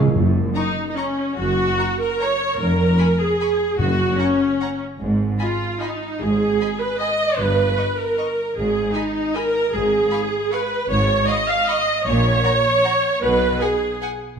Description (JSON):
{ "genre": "classical", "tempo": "141-167 BPM", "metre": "3/4", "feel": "rubato", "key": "F# major", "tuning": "A4 = 440 Hz", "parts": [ { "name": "timpani", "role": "percussion", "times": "0.0-0.7, 3.8-4.4 s", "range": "F#2 to C#3", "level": "-22 LUFS", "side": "equal", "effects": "none" }, { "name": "rich symphonic cello section", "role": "bass", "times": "0.2-13.5 s", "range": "E#2 to B2", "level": "-25 LUFS", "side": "right 1 dB", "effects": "none" }, { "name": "rich symphonic double bass section", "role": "bass", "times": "0.2-13.5 s", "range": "E#1 to B1", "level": "-26 LUFS", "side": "right 2 dB", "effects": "none" }, { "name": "warm symphonic violin section", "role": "melody", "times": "0.6-14.1 s", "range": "G#5 to C#6", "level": "-38 LUFS", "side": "left 2 dB", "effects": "none" }, { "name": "warm symphonic violin section", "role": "second line", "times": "0.6-14.1 s", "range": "D#5 to B5", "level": "-34 LUFS", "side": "left 1 dB", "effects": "none" }, { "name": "rich symphonic viola section", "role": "accompaniment", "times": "0.6-14.0 s", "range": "C#4 to E#5", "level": "-19 LUFS", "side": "right 1 dB", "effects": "none" } ], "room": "wet recital hall reverb, RT60 1.4 s", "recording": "none", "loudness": "-17 LUFS", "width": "side -6 dB against mid", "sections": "0.1-14.4 A section", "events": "none", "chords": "0.1 F#5; 2.6 C#/E# (rootless); 3.8 F#5; 5.0 G#5; 7.4 D#/G (rootless); 8.6 G#5; 9.7 C#7(no3)/G#; 12.1 F#/A# (rootless); 13.2 G#m/B", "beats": "| 0.15 0.55 0.97 | 1.38 1.79 2.20 | 2.60 2.99 3.40 | 3.79 4.19 4.60 | 4.99 5.39 5.81 | 6.21 6.60 7.00 | 7.38 7.78 8.18 | 8.56 8.95 9.35 | 9.73 10.12 10.52 | 10.89 11.28 11.68 | 12.06 12.44 12.84 | 13.22 13.61 14.01" }